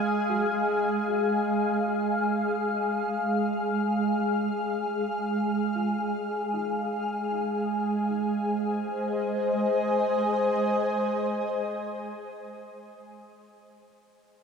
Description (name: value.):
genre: ambient.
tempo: free time.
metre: none.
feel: none.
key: Ab mixolydian.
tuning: A4 = 441 Hz.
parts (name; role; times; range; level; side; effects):
shimmering ambient pad; sustained chords; 0.0-12.0 s; Ab3 to F5; -25 LUFS; equal; chorus, built-in reverb.
soft round pluck; arpeggios; 0.3-12.0 s; Eb4 to Gb4; -44 LUFS; left 1 dB; none.
room: wet spring reverb, RT60 2.1 s.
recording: echo-heavy mix.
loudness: -25 LUFS.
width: side -6 dB against mid.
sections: 0.0-8.1 A section; 8.1-11.2 B section.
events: none.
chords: 0.0 Ab5; 8.1 Ab.